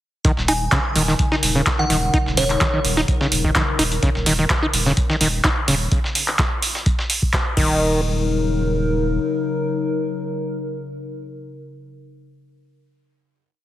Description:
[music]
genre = acid house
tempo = 127 BPM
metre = 4/4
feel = swing 53% on 16ths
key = Eb minor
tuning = A4 = 440 Hz
[part]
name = warbly tape-like pad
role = sustained chords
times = 0.7-12.3 s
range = Db3 to Bb4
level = -26 LUFS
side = left 2 dB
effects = chorus, built-in reverb, sidechain pumping
[part]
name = overdriven acid bass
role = riff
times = 0.2-8.0 s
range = Db3 to Eb4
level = -22 LUFS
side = equal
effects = distortion, tube saturation, sidechain pumping, analog delay
[part]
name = dusty soul sampler-style drum kit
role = drums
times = 0.2-7.5 s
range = hi-hat, snare drum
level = -28 LUFS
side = left 1 dB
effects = sidechain pumping on hats, high-pass filter on hats, high-pass filter on snare
[part]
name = electronic kick drum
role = drums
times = 0.2-7.7 s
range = none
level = -21 LUFS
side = equal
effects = none
[part]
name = saturated sub bass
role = bass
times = 0.4-9.2 s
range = Eb1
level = -23 LUFS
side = equal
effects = sidechain pumping
[part]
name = glassy synth bell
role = melody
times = 0.5-2.7 s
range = Db5 to Ab5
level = -25 LUFS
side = right 1 dB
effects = chorus, tape echo
[part]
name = electro analog drum machine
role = drums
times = 0.5-7.7 s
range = crash cymbal, handclaps, hi-hat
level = -22 LUFS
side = right 1 dB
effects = none
[sound]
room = light reverb, digital ambience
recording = heavily compressed radio sound, multiband compression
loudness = -17 LUFS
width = side -14 dB against mid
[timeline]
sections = 0.2-7.8 groove; 7.8-11.6 final hit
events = none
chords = 0.2 Ebm7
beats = | 0.25 0.72 1.19 1.67 | 2.14 2.61 3.08 3.55 | 4.03 4.50 4.97 5.44 | 5.92 6.39 6.86 7.33 | 7.81 8.28 8.75 9.22 | 9.70 10.17 10.64 11.11

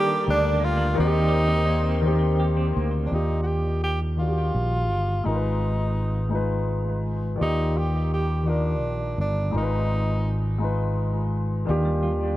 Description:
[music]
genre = R&B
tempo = 56 BPM (dotted quarters)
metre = 6/8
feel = straight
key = Eb major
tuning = A4 = 444 Hz
[part]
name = warm tenor saxophone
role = melody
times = 0.0-10.6 s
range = D4 to G4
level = -28 LUFS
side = right 1 dB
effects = tape echo
[part]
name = semi-hollow electric guitar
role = second line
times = 0.0-3.7, 11.7-12.4 s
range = Eb3 to G4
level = -31 LUFS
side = right 3 dB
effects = tremolo
[part]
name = dark concert grand piano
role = accompaniment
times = 0.0-12.4 s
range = Eb3 to D5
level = -27 LUFS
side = left 2 dB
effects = tape echo
[part]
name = hollow soft pad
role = sustained chords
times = 0.0-3.1 s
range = Bb4 to D6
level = -33 LUFS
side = left 1 dB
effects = ensemble chorus, phaser
[part]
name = fretless electric bass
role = bass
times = 0.3-12.4 s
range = G1 to Eb2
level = -24 LUFS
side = equal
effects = none
[sound]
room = small room ambience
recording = echo-heavy mix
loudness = -21 LUFS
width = side -15 dB against mid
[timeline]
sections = 0.0-3.1 A section; 3.1-12.4 B section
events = none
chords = 0.0 Ebmaj7; 1.0 Eb6; 3.1 Ebmaj9; 5.2 Abm6; 7.4 Ebmaj9; 9.5 Abm6; 11.7 Ebmaj9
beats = | 0.96 2.04 | 3.11 4.18 | 5.25 6.32 | 7.39 8.46 | 9.54 10.61 | 11.68

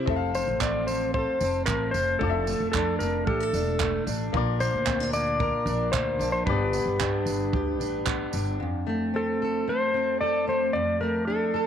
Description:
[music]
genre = acoustic pop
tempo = 113 BPM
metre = 4/4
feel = straight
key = F major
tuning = A4 = 445 Hz
[part]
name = fingerpicked plugged-in steel-string acoustic guitar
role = accompaniment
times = 0.0-11.7 s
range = F2 to Bb4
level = -29 LUFS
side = equal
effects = double-tracked left and right
[part]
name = bright upright piano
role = accompaniment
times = 0.1-8.6 s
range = Bb3 to F5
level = -35 LUFS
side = left 13 dB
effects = none
[part]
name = upright bass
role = bass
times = 0.1-8.6 s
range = E1 to G2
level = -30 LUFS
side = equal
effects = none
[part]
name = compact cocktail drum kit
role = drums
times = 0.1-8.5 s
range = handclaps, kick drum, tambourine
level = -32 LUFS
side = right 4 dB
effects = none
[part]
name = clean lap steel guitar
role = melody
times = 0.4-11.7 s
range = A4 to D5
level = -27 LUFS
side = left 1 dB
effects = none
[sound]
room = moderate spring reverb, RT60 2.1 s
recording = 1960s-style stereo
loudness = -24 LUFS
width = side -8 dB against mid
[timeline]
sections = 0.1-8.6 A section; 8.6-11.7 B section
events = none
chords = 0.1 F; 2.2 Dmadd9/F; 4.3 Bb; 6.5 G; 8.6 F; 10.7 Dm/F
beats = | 0.08 0.61 1.15 1.68 | 2.21 2.74 3.28 3.81 | 4.34 4.87 5.41 5.94 | 6.47 7.00 7.54 8.07 | 8.60 9.13 9.66 10.20 | 10.73 11.26

